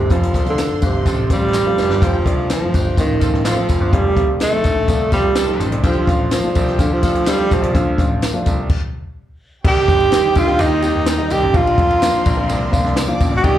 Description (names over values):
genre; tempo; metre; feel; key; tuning
uptempo 1960s-style soul; 126 BPM; 4/4; straight; unclear; A4 = 440 Hz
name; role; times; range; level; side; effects
breathy tenor saxophone; melody; 0.0-13.6 s; C3 to G4; -17 LUFS; right 2 dB; slapback echo
clear concert grand piano; bass; 0.0-13.6 s; F1 to F2; -20 LUFS; equal; none
clear horn section; second line; 0.1-13.6 s; F3 to C5; -31 LUFS; left 2 dB; slapback echo
dark studio violin section; second line; 0.1-13.6 s; F4 to Eb6; -30 LUFS; right 1 dB; slapback echo
dark upright piano; accompaniment; 0.1-13.6 s; Eb3 to G4; -24 LUFS; left 2 dB; slapback echo
compact cocktail drum kit; drums; 0.1-13.6 s; crash cymbal, hi-hat, kick drum, ride cymbal, snare drum; -19 LUFS; equal; none
tambourine and handclaps; percussion; 0.1-13.6 s; none; -30 LUFS; right 1 dB; none
room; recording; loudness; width
moderate club reverb, RT60 0.8 s; live gig heard through the venue's PA, club reverb; -14 LUFS; side -12 dB against mid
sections
0.0-2.0 A section; 2.0-9.6 B section; 9.6-13.6 C section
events
band accent 0.1-2.0; drum fill 1.5-2.0; stop 8.7-9.6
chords
0.1 F; 5.8 Dm; 9.6 Cm; 11.5 Bbadd9